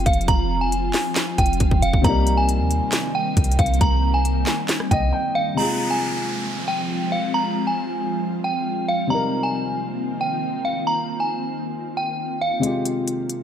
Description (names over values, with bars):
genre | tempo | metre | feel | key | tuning
hip hop, trap | 136 BPM | 4/4 | half-time | unclear | A4 = 439 Hz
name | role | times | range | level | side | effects
delicate synth tine bell | melody | 0.0-12.6 s | F5 to Bb5 | -24 LUFS | right 1 dB | chorus, low-pass filter, tape echo
dark grand piano | accompaniment | 0.0-13.4 s | C3 to G5 | -27 LUFS | left 4 dB | low-pass filter
ethereal airy pad | sustained chords | 0.0-12.6 s | Eb3 to F4 | -27 LUFS | equal | ensemble chorus, built-in reverb
clean 808-style bass | bass | 0.0-5.1 s | F1 to Eb2 | -21 LUFS | equal | none
trap drum kit | drums | 0.1-5.0, 12.6-13.4 s | handclaps, hi-hat, kick drum, rim click, snare drum | -22 LUFS | equal | none
downlifter | sound effects | 5.6-9.1 s | none | -31 LUFS | right 1 dB | none
room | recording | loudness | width
light reverb | none | -19 LUFS | side -9 dB against mid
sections
0.0-5.6 A section; 5.6-12.6 B section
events
silent gap 5.1-5.6; kick muted 12.6-13.4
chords
0.0 Fmadd9; 2.0 Cm7; 5.6 Fmadd9; 9.1 Cm7; 12.6 Fmadd9